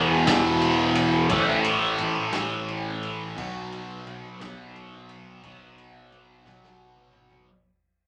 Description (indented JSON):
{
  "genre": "psychedelic rock",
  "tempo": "58 BPM (dotted quarters)",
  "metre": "6/8",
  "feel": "straight",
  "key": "unclear",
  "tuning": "A4 = 438 Hz",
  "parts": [
    { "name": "thick fuzz guitar", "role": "riff", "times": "0.0-7.5 s", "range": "E2 to B3", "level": "-26 LUFS", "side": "equal", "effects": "distortion, phaser" },
    { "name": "fuzz picked electric bass", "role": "bass", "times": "0.0-7.4 s", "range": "A1 to E2", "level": "-36 LUFS", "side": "equal", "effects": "overdrive" },
    { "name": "raw garage drum kit", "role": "drums", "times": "0.3-7.5 s", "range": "crash cymbal, kick drum, ride cymbal, snare drum, toms", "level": "-31 LUFS", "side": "equal", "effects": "none" }
  ],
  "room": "wet club reverb, RT60 0.7 s",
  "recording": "none",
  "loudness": "-24 LUFS",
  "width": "mono",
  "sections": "0.0-7.5 A section",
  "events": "fade-out 0.0-7.5; drum fill 6.5-7.5",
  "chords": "0.0 E5; 1.3 A5; 3.4 B5",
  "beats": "0.28 | 1.31 2.34 | 3.37 4.40 | 5.43 6.46"
}